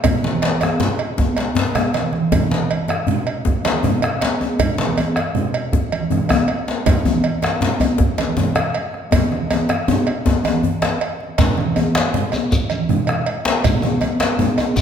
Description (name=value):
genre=west african traditional, West African drum ensemble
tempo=106 BPM (dotted quarters)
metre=12/8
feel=straight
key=none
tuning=none
part: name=cowbell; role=percussion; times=0.0-14.7 s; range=none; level=-25 LUFS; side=right 5 dB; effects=none
part: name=djembe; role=percussion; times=0.0-14.8 s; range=none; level=-24 LUFS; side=left 5 dB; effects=none
part: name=djembe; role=percussion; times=0.0-14.8 s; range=none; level=-20 LUFS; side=left 3 dB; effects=none
part: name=bombo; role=percussion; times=0.1-14.8 s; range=none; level=-23 LUFS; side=right 1 dB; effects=none
part: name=congas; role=percussion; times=0.1-14.8 s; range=none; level=-23 LUFS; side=right 5 dB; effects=none
part: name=shekere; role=percussion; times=11.4-14.8 s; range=none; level=-27 LUFS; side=left 2 dB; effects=none
room=wet recital hall reverb, RT60 1.5 s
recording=none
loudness=-16 LUFS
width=side -8 dB against mid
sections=0.0-11.4 A section; 11.4-14.8 B section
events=drum fill 1.4-2.3, 9.1-11.4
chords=none